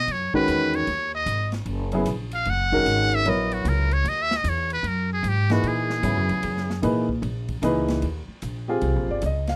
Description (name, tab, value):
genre	modal jazz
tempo	151 BPM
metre	4/4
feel	swing 65% on 8ths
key	unclear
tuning	A4 = 440 Hz
part	trumpet with metal mute	melody	0.0-6.9 s	F#4 to F#5	-27 LUFS	equal	none
part	upright bass	bass	0.0-9.6 s	F#1 to A#2	-28 LUFS	equal	none
part	swinging big-band drum kit	drums	0.1-9.5 s	hi-hat, kick drum, ride cymbal, snare drum	-40 LUFS	equal	none
part	clear grand piano	accompaniment	0.3-9.6 s	A#2 to F5	-26 LUFS	equal	none
room	little or no reverb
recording	dry, close 1970s-style studio recording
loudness	-24 LUFS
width	mono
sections	0.0-8.0 A section; 8.0-9.6 A section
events	muted trumpet solo 0.0-8.0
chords	0.0 F#13sus4; 1.7 D#m7/F#; 8.0 Eb7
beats	| 0.08 0.48 0.87 1.27 | 1.67 2.07 2.46 2.86 | 3.26 3.66 4.05 4.45 | 4.85 5.25 5.64 6.04 | 6.44 6.83 7.23 7.63 | 8.03 8.42 8.82 9.22